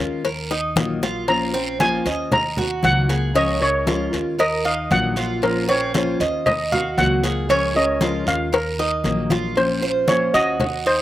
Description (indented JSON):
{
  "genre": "latin, Cuban son and guajira",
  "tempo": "116 BPM",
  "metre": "4/4",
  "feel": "straight",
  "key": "Bb minor",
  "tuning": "A4 = 440 Hz",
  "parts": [
    { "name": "fingerpicked plugged-in steel-string acoustic guitar", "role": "accompaniment", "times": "0.0-10.6 s", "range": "Db3 to C5", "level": "-25 LUFS", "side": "left 4 dB", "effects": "slapback echo" },
    { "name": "Cuban tres", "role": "arpeggios", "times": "0.0-11.0 s", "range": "C4 to Eb5", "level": "-24 LUFS", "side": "right 4 dB", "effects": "slapback echo" },
    { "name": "upright bass", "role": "bass", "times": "0.0-11.0 s", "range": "Bb1 to Eb2", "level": "-27 LUFS", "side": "equal", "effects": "none" },
    { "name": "congas", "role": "percussion", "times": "0.2-11.0 s", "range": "none", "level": "-26 LUFS", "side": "left 1 dB", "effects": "none" },
    { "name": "cowbell and bongos", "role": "percussion", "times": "0.2-10.9 s", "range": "none", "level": "-26 LUFS", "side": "left 6 dB", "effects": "slapback echo" },
    { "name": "guiro", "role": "percussion", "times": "0.2-11.0 s", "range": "none", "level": "-32 LUFS", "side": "right 3 dB", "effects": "slapback echo" },
    { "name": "steel pan", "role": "melody", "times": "1.3-11.0 s", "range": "Bb4 to Bb5", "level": "-21 LUFS", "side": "equal", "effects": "slapback echo" }
  ],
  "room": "little or no reverb",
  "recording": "recorded outdoors, with no room sound",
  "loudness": "-18 LUFS",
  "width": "side -14 dB against mid",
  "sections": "0.0-9.6 A section; 9.6-11.0 B section",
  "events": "drum fill 0.5-1.3, 8.5-9.6",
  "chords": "0.2 Ebmadd9; 1.3 Bbmadd9; 2.3 Ebmadd9; 3.4 Db6; 4.4 Ebmadd9; 5.4 Bbmadd9; 6.5 Ebmadd9; 7.5 Db6; 8.5 Ebmadd9; 9.6 Bbmadd9"
}